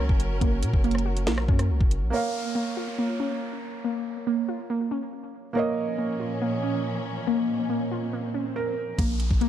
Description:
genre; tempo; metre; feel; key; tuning
hip hop, drill; 140 BPM; 4/4; half-time; Bb minor; A4 = 440 Hz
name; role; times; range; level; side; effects
felt-muted upright piano; accompaniment; 0.0-9.0 s; Gb3 to F5; -32 LUFS; right 4 dB; none
warm symphonic string section; sustained chords; 0.0-2.1, 5.6-8.9 s; Bb2 to Bb4; -34 LUFS; left 1 dB; none
warbly dusty pluck; arpeggios; 0.0-9.5 s; Bb3 to Gb4; -29 LUFS; equal; chorus, phaser, tape echo
long sustained 808-style bass; bass; 0.0-2.1, 9.0-9.5 s; Gb1 to Bb2; -26 LUFS; equal; none
drill drum kit; drums; 0.1-2.0, 9.0-9.5 s; hi-hat, kick drum, rim click, snare drum; -23 LUFS; equal; none
downlifter and swell; sound effects; 2.1-9.5 s; none; -39 LUFS; right 1 dB; none
room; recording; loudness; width
light reverb; dark, warm production; -24 LUFS; side -10 dB against mid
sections
0.0-2.1 A section; 2.1-9.0 B section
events
swell 7.7-9.0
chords
0.0 Gb; 2.1 Bbm; 9.0 N.C.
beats
| 0.41 0.84 1.27 1.70 | 2.13 2.56 2.98 3.41 | 3.84 4.27 4.70 5.13 | 5.56 5.99 6.41 6.84 | 7.27 7.70 8.13 8.56 | 8.98 9.41

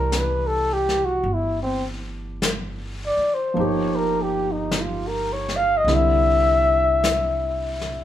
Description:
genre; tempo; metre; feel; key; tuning
jazz ballad; 52 BPM; 4/4; swing 66% on 8ths; unclear; A4 = 440 Hz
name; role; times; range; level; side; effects
breathy flugelhorn; melody; 0.0-8.0 s; C4 to F5; -21 LUFS; left 1 dB; none
warm concert grand piano; accompaniment; 0.0-8.0 s; D3 to G4; -28 LUFS; right 1 dB; none
upright bass; bass; 0.0-8.0 s; G1 to C2; -27 LUFS; right 1 dB; none
vintage brush drum kit; drums; 0.1-8.0 s; brushed snare drum, hi-hat, snare drum; -29 LUFS; left 2 dB; none
room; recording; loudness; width
light reverb; band playing live in one room; -19 LUFS; side -11 dB against mid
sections
0.0-8.0 A section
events
flugelhorn solo 0.0-8.0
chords
0.0 C69; 3.6 Eb9/G; 5.9 C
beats
0.11 1.26 2.41 | 3.56 4.72 5.88 7.04

